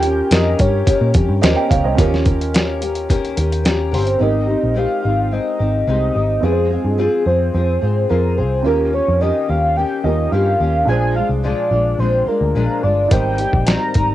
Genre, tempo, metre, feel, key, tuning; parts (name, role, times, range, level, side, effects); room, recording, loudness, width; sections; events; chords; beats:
indie pop, bedroom pop; 108 BPM; 4/4; straight; A4 = 440 Hz
warbly nostalgic lead; melody; 0.0-14.1 s; Ab4 to Bb5; -19 LUFS; equal; analog chorus, cassette tape, analog delay
fingerpicked steel-string acoustic guitar; accompaniment; 0.0-14.1 s; Ab2 to Bb4; -22 LUFS; left 6 dB; lush chorus, warbly pitch drift, cassette tape
warm upright piano; accompaniment; 0.0-14.1 s; G3 to G5; -24 LUFS; right 7 dB; cassette tape
vintage muted picked electric bass; bass; 0.0-14.1 s; G1 to Bb2; -19 LUFS; equal
dusty soul sampler-style drum kit; drums; 0.0-4.2, 13.1-14.1 s; hi-hat, kick drum, snare drum; -16 LUFS; equal
light reverb; home recording on cassette; -14 LUFS; side -13 dB against mid
0.0-2.0 A section; 2.0-4.2 B section; 4.2-14.1 C section
0.0 Eb7; 4.2 Abmaj7; 6.4 Fm; 8.7 Eb7; 10.9 Bb7; 13.1 Abmaj7
0.31 0.87 1.42 | 1.98 2.54 3.09 3.65 | 4.21 4.76 5.32 5.88 | 6.43 6.99 7.55 8.10 | 8.66 9.22 9.78 10.33 | 10.89 11.45 12.00 12.56 | 13.12 13.68